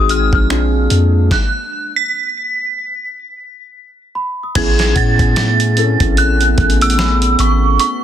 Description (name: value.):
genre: contemporary R&B.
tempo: 74 BPM.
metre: 4/4.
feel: swing 58% on 16ths.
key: unclear.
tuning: A4 = 445 Hz.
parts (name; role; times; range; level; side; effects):
synth chime; melody; 0.0-7.9 s; C#6 to B6; -18 LUFS; right 2 dB; ensemble chorus, phaser, ping-pong delay.
muted felt-like synth keys; accompaniment; 0.0-7.8 s; B3 to A4; -20 LUFS; equal; chorus.
hollow soft pad; sustained chords; 0.0-8.0 s; G#3 to B4; -23 LUFS; equal; chorus.
long sustained 808-style bass; bass; 0.0-7.8 s; G#1 to A2; -15 LUFS; equal; none.
small celesta; texture; 0.0-8.0 s; F#5 to G#6; -28 LUFS; right 2 dB; ping-pong delay.
dusty soul sampler-style drum kit; drums; 0.1-8.0 s; crash cymbal, finger snaps, hi-hat, kick drum, snare drum; -16 LUFS; equal; soft clipping on snare.
room: digital ambience.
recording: dense, heavily limited modern master.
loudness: -12 LUFS.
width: side -10 dB against mid.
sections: 0.0-4.6 A section; 4.6-8.0 B section.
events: stop 1.3-4.6.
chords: 0.5 A#7; 1.3 N.C.; 4.6 Amaj9.